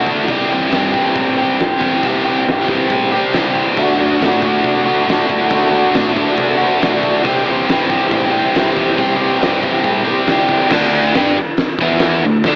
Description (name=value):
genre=garage rock duo or trio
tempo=138 BPM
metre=4/4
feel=straight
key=unclear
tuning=A4 = 441 Hz
part: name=biting overdriven guitar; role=riff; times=0.0-12.6 s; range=C3 to G4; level=-16 LUFS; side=equal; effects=cassette tape
part: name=overdriven picked electric bass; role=bass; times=0.0-12.6 s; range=B1 to C3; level=-32 LUFS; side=equal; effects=none
part: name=oversized low-tuned drum kit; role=drums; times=0.1-12.5 s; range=crash cymbal, hi-hat, kick drum, snare drum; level=-22 LUFS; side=equal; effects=cassette tape
part: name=overdriven combo organ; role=sustained chords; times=3.8-10.7 s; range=E4 to D5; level=-24 LUFS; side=equal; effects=cassette tape
room=moderate spring reverb, RT60 1.3 s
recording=home recording on cassette, AM radio sound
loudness=-15 LUFS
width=mono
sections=0.0-10.7 A section; 10.7-12.6 B section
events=none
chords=0.3 C; 3.8 D; 7.3 C; 10.7 D5; 11.8 E5